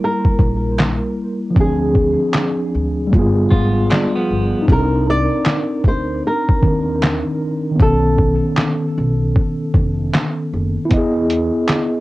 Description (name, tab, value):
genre	lo-fi hip hop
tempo	77 BPM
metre	4/4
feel	swing 65% on 16ths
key	unclear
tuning	A4 = 440 Hz
part	flamenco guitar	melody	0.0-8.5 s	Ab4 to D5	-22 LUFS	equal	cassette tape, analog delay
part	mellow tine electric piano	accompaniment	0.0-12.0 s	Eb3 to D#5	-18 LUFS	equal	medium stereo tremolo, cassette tape
part	lo-fi sampler-style drum kit	drums	0.2-11.9 s	handclaps, hi-hat, kick drum, snare drum	-16 LUFS	equal	overdrive
part	upright bass	bass	0.4-11.5 s	F1 to E2	-21 LUFS	equal	none
part	finger snap	percussion	0.8-11.9 s	none	-34 LUFS	right 8 dB	none
part	clean electric guitar	second line	3.5-4.7 s	F3 to F4	-27 LUFS	equal	cassette tape, analog delay
room	light reverb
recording	home recording on cassette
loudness	-14 LUFS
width	side -18 dB against mid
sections	0.0-12.0 A section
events	break 0.0-10.9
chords	0.0 Gm6; 1.6 Dm7b5; 3.1 G7b9; 4.7 Cm9; 7.8 B9; 10.9 Emaj7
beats	0.00 0.78 | 1.56 2.34 3.12 3.90 | 4.68 5.46 6.24 7.01 | 7.79 8.57 9.35 10.13 | 10.91 11.69